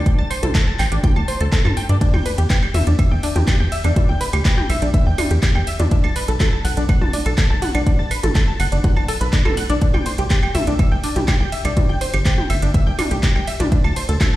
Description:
melodic techno; 123 BPM; 4/4; straight; E minor; A4 = 442 Hz
tight sequenced synth; arpeggios; 0.1-14.4 s; D4 to A6; -24 LUFS; equal; chorus, sidechain pumping, digital delay
electronic kick drum; drums; 0.1-14.3 s; -17 LUFS; equal; studio reverb
house drum kit; drums; 0.1-14.3 s; claves, handclaps, hi-hat, ride cymbal, toms; -24 LUFS; equal; sidechain pumping on hats, studio reverb, sidechain pumping on perc, sidechain pumping on toms, sidechain pumping on cymbals
tight sequencer bass; bass; 0.2-14.2 s; F#1 to G2; -18 LUFS; equal; sidechain pumping
light reverb; played on a big sound system in a bare room, large studio reverb; -15 LUFS; side -16 dB against mid
0.0-14.4 A section
0.0 D7sus4; 2.0 Em7; 5.9 Bm7; 9.8 Cadd9; 13.7 D7(no3)
| 0.06 0.55 1.04 1.52 | 2.01 2.50 2.99 3.48 | 3.96 4.45 4.94 5.43 | 5.91 6.40 6.89 7.38 | 7.87 8.35 8.84 9.33 | 9.82 10.30 10.79 11.28 | 11.77 12.26 12.74 13.23 | 13.72 14.21

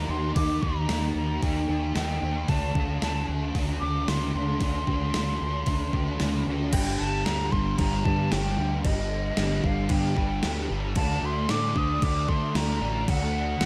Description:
rock, shoegaze and dream pop; 113 BPM; 4/4; straight; G minor; A4 = 442 Hz
hollow concert flute; melody; 0.0-13.7 s; Eb5 to Eb6; -34 LUFS; equal; tape echo
thick fuzz guitar; riff; 0.0-13.7 s; G2 to Eb4; -31 LUFS; equal; distortion, ensemble chorus
growling fingered electric bass; bass; 0.0-13.7 s; G1 to D3; -32 LUFS; equal; overdrive
gated 80s digital drum machine; drums; 0.4-13.7 s; crash cymbal, hi-hat, kick drum, snare drum; -32 LUFS; equal; gated reverb, gated reverb snare, overdrive
little or no reverb; dark, warm production; -26 LUFS; mono
0.0-6.7 A section; 6.7-13.7 B section
0.0 Eb; 2.5 D5; 6.7 G5; 11.0 D
| 0.36 0.90 1.43 1.96 | 2.49 3.02 3.55 4.08 | 4.61 5.14 5.67 6.20 | 6.73 7.26 7.79 8.32 | 8.85 9.38 9.91 10.44 | 10.97 11.50 12.03 12.56 | 13.09 13.62

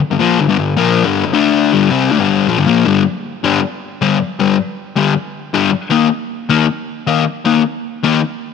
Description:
rock; 157 BPM; 4/4; straight; G minor; A4 = 440 Hz
fuzz guitar; solo; 0.0-8.2 s; G2 to Eb4; -12 LUFS; left 7 dB; distortion
light reverb, digital ambience; -12 LUFS; side -6 dB against mid
0.0-2.9 A section; 2.9-8.5 B section
0.0 Gm; 1.3 D5; 1.7 Gm; 2.9 G5; 5.9 Eb5
0.20 0.58 0.96 | 1.34 1.72 2.10 2.48 | 2.86 3.25 3.63 4.01 | 4.39 4.78 5.16 5.54 | 5.93 6.31 6.69 7.08 | 7.46 7.84

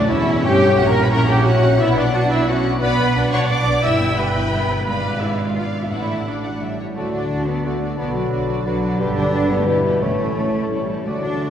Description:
classical, dramatic, fast romantic movement for symphony orchestra; 176 BPM; 3/4; straight; D major; A4 = 439 Hz
warm symphonic violin section; melody; 0.0-11.5 s; A4 to E6; -28 LUFS; left 2 dB
dark symphonic violin section; second line; 0.0-11.5 s; E4 to G5; -28 LUFS; left 2 dB
rich studio viola section; accompaniment; 0.0-11.5 s; A3 to E5; -23 LUFS; right 1 dB
concert harp; arpeggios; 0.0-11.5 s; E2 to C#5; -23 LUFS; left 3 dB
clear symphonic cello section; bass; 0.0-11.5 s; F#3 to E4; -24 LUFS; right 2 dB
timpani; percussion; 0.0-0.2, 5.9-6.4, 10.0-10.5 s; barely audible
clear symphonic double bass section; bass; 0.1-11.5 s; E1 to G2; -24 LUFS; right 2 dB
dark cor anglais; second line; 7.0-11.5 s; A4 to D5; -30 LUFS; right 2 dB
warm clarinet; second line; 7.0-11.5 s; E4 to G4; -30 LUFS; left 2 dB
clear bassoon; accompaniment; 7.0-11.5 s; A2 to D3; -27 LUFS; right 1 dB
mellow French horn section; sustained chords; 7.0-11.5 s; C#4 to B4; -26 LUFS; left 3 dB
wet concert hall reverb, RT60 2.3 s; heard from further back in the room; -16 LUFS; side -9 dB against mid
0.0-7.0 A section; 7.0-11.5 B section
0.0 A; 0.8 F#7/A#; 1.8 Bm; 3.8 Em/G; 4.9 G#dim7; 5.9 D/A; 6.6 A; 7.0 D; 8.0 Bm; 9.0 G; 9.7 Em; 10.0 A
0.09 0.44 | 0.78 1.12 1.46 | 1.80 2.14 2.48 | 2.81 3.15 3.49 | 3.83 4.17 4.51 | 4.85 5.20 5.55 | 5.90 6.26 6.61 | 6.96 7.31 7.65 | 7.99 8.33 8.67 | 9.00 9.34 9.68 | 10.03 10.37 10.72 | 11.07 11.41

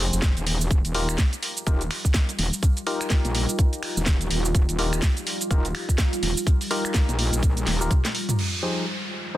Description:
bass house; 125 BPM; 4/4; swing 59% on 16ths; A4 = 441 Hz
percussive organ stab; stabs; 0.0-9.4 s; F3 to C5; -31 LUFS; left 2 dB; chorus, sidechain pumping, dub echo
metallic wobble bass; bass; 0.0-7.9 s; Eb1 to Bb1; -25 LUFS; equal; chorus, tube saturation, sidechain pumping
garage drum kit; drums; 0.1-8.5 s; crash cymbal, finger snaps, hi-hat, shaker, snare drum, toms; -27 LUFS; right 1 dB
electronic kick drum; drums; 0.2-8.0 s; -20 LUFS; equal
deep dark ambient pad; sustained chords; 2.0-9.4 s; F3 to F4; -32 LUFS; equal; chorus, built-in reverb, sidechain pumping
downlifter; sound effects; 8.4-9.4 s; -30 LUFS; equal
granular cloud pad; texture; 9.1-9.4 s; F4 to G5; -47 LUFS; right 1 dB
little or no reverb; dense, heavily limited modern master; -21 LUFS; side -15 dB against mid
0.0-8.4 A section
drum fill 7.7-8.4
0.0 Fm7; 0.7 Ebadd9; 8.4 Fm7
0.23 | 0.71 1.19 1.67 2.15 | 2.63 3.11 3.59 4.07 | 4.55 5.03 5.51 5.99 | 6.47 6.95 7.43 7.91 | 8.39 8.87 9.35

